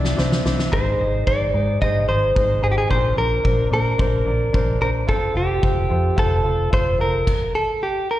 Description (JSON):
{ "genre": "piano-driven pop", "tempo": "110 BPM", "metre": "4/4", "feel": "straight", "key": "unclear", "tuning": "A4 = 435 Hz", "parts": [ { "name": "clear baby grand piano", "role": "accompaniment", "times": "0.0-7.3 s", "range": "Ab2 to Eb5", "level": "-26 LUFS", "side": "left 1 dB", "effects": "slapback echo" }, { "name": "vintage muted fingered electric bass", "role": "bass", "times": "0.0-7.2 s", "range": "F1 to Bb2", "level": "-22 LUFS", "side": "equal", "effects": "none" }, { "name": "loose indie drum kit", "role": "drums", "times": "0.0-7.4 s", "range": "crash cymbal, kick drum, snare drum", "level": "-22 LUFS", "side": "equal", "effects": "none" }, { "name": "direct-recorded clean electric guitar", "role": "melody", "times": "0.7-8.2 s", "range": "G4 to Eb5", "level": "-21 LUFS", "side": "right 1 dB", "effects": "slapback echo" } ], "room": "light reverb", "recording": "live gig heard through the venue's PA, recital hall reverb", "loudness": "-17 LUFS", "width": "side -14 dB against mid", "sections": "0.0-8.2 A section", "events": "drum fill 0.0-0.7; stop 7.3-8.2", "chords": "0.0 Cadd9; 0.7 Ab; 2.9 Bbadd9; 5.1 F; 7.3 N.C." }